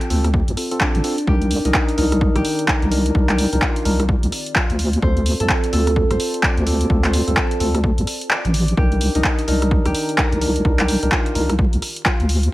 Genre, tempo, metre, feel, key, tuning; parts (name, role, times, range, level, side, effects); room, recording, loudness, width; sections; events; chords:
UK garage, two-step garage; 128 BPM; 4/4; swing 61% on 16ths; C dorian; A4 = 441 Hz
concert harp; melody; 0.0-12.5 s; D4 to D5; -27 LUFS; equal; digital delay
mellow tine electric piano; stabs; 0.0-11.5 s; C4 to Bb4; -24 LUFS; equal
punchy analog drum machine; drums; 0.0-12.5 s; handclaps, hi-hat, rim click; -22 LUFS; equal; overdrive, studio reverb
warbly tape-like pad; texture; 0.3-12.5 s; Eb3 to Bb5; -36 LUFS; equal
deep soft wobble bass; bass; 0.1-12.5 s; A1 to D2; -18 LUFS; equal; chorus
electronic kick drum; drums; 0.3-12.2 s; -20 LUFS; equal; overdrive, studio reverb
little or no reverb; vinyl crackle; -16 LUFS; side -17 dB against mid
0.0-12.5 A section
kick drops out 8.3-8.8
0.0 Dm7; 1.3 Cm9; 4.8 Dm7; 8.8 Cm9